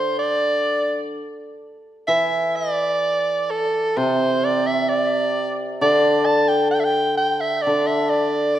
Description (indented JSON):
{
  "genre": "chinese traditional",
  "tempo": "65 BPM",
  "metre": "2/4",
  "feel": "rubato",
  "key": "D shang mode",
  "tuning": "A4 = 440 Hz",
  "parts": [
    { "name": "warm soprano saxophone", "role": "melody", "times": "0.0-8.6 s", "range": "A4 to A5", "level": "-20 LUFS", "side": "right 1 dB", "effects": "none" },
    { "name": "hammered dulcimer", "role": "accompaniment", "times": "0.0-8.6 s", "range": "C3 to E3", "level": "-22 LUFS", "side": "left 1 dB", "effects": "none" }
  ],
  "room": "wet scoring stage reverb, RT60 1.6 s",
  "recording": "none",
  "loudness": "-18 LUFS",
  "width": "side -12 dB against mid",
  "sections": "0.0-2.1 A section; 2.1-8.6 B section",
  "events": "none",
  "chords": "none"
}